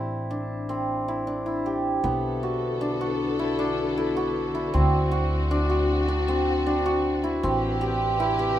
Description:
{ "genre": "contemporary instrumental, chamber music in an uneven meter", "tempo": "156 BPM", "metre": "7/4", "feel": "straight", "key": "unclear", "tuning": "A4 = 439 Hz", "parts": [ { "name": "hammered dulcimer", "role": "arpeggios", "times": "0.0-8.6 s", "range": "B3 to G4", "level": "-24 LUFS", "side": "equal", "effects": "none" }, { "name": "upright bass", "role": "bass", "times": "0.0-8.6 s", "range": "A1 to D2", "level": "-28 LUFS", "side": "equal", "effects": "none" }, { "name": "dark studio string section", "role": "sustained chords", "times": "2.0-8.6 s", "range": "C3 to B4", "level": "-31 LUFS", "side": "left 3 dB", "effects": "none" } ], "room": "light reverb", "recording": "close, detailed microphones", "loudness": "-23 LUFS", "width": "side -11 dB against mid", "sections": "0.0-2.0 A section; 2.0-8.6 B section", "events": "none", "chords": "0.0 Am7; 2.0 Bm7; 4.7 D7; 7.4 Am9" }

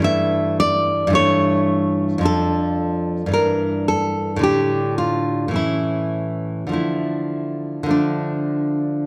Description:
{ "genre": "classical, baroque-style dance for nylon-string guitar", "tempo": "50-55 BPM", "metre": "3/4", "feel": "rubato", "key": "D minor", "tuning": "A4 = 440 Hz", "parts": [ { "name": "nylon-string guitar", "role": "solo", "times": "0.0-9.1 s", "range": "F2 to E5", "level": "-20 LUFS", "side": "equal", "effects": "none" } ], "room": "moderate recital hall reverb, RT60 1.6 s", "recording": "faint mains hum", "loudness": "-20 LUFS", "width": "mono", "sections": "0.0-9.1 A section", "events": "none", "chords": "0.1 A7/G; 2.3 Dm/F; 3.4 Em7b5/G; 4.4 Dm/A; 5.6 A; 6.7 Dm" }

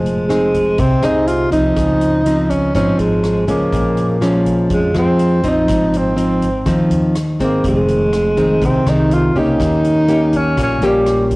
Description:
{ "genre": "bossa nova", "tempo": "123 BPM", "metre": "4/4", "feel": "straight", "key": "F minor", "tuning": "A4 = 441 Hz", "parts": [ { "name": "breathy tenor saxophone", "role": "melody", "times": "0.0-11.3 s", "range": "G3 to F4", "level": "-17 LUFS", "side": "right 1 dB", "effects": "cassette tape" }, { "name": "nylon-string guitar", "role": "accompaniment", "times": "0.0-11.4 s", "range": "F2 to C5", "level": "-15 LUFS", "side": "equal", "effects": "cassette tape" }, { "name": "upright bass", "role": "bass", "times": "0.0-11.4 s", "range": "F1 to F2", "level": "-22 LUFS", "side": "equal", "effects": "none" }, { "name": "swinging big-band drum kit", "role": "drums", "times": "0.1-11.4 s", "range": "hi-hat, kick drum, rim click", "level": "-26 LUFS", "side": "equal", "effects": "cassette tape" } ], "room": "light reverb, studio reverb", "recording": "home recording on cassette", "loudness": "-12 LUFS", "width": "side -22 dB against mid", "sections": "0.0-11.4 A section", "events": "none", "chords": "0.0 Fm7; 1.8 Dbmaj9; 3.7 Bbm7; 5.7 Ab6; 7.6 Fm7; 9.6 Eb7" }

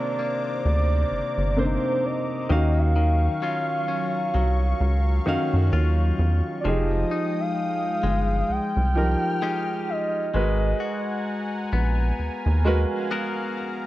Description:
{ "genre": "R&B", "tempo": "65 BPM", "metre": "4/4", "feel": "swing 58% on 16ths", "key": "unclear", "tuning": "A4 = 439 Hz", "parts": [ { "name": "gliding portamento lead", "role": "melody", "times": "0.0-11.7 s", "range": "C5 to G5", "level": "-28 LUFS", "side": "equal", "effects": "chorus" }, { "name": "clear baby grand piano", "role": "accompaniment", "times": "0.0-13.9 s", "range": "C3 to F5", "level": "-28 LUFS", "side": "right 1 dB", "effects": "none" }, { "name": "warm analog pad", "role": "sustained chords", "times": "0.0-13.9 s", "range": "Gb3 to F6", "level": "-34 LUFS", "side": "right 1 dB", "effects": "chorus, phaser" }, { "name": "direct-recorded clean electric guitar", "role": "arpeggios", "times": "0.0-13.9 s", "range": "C3 to Bb4", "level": "-31 LUFS", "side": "left 4 dB", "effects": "digital delay" }, { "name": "rubbery square bass", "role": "bass", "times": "0.7-12.9 s", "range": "F1 to Gb2", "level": "-21 LUFS", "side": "equal", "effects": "none" } ], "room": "light reverb, digital ambience", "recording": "worn, warbling old tape, cassette tape, warbly pitch drift", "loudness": "-21 LUFS", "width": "side -16 dB against mid", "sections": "0.0-6.7 A section; 6.7-13.9 B section", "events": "none", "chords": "0.0 Cm9; 2.5 Ebm9; 6.7 Fm9; 10.3 Abm9" }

